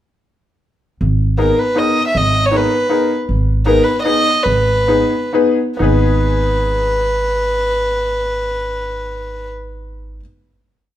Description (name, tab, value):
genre	musette waltz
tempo	122-159 BPM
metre	3/4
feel	straight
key	G# minor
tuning	A4 = 440 Hz
part	upright bass	bass	1.0-10.2 s	G#1	-18 LUFS	right 1 dB	none
part	warm violin	melody	1.4-9.5 s	A#4 to E5	-17 LUFS	equal	none
part	bright upright piano	accompaniment	1.4-10.2 s	B3 to B4	-17 LUFS	left 2 dB	none
room	moderate recital hall reverb, RT60 1.3 s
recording	minimal, uncompressed stereo recording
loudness	-13 LUFS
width	side -12 dB against mid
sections	1.0-5.8 A section; 5.8-8.7 final chord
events	slowing down 3.3-5.8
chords	1.0 G#madd9; 3.3 G#m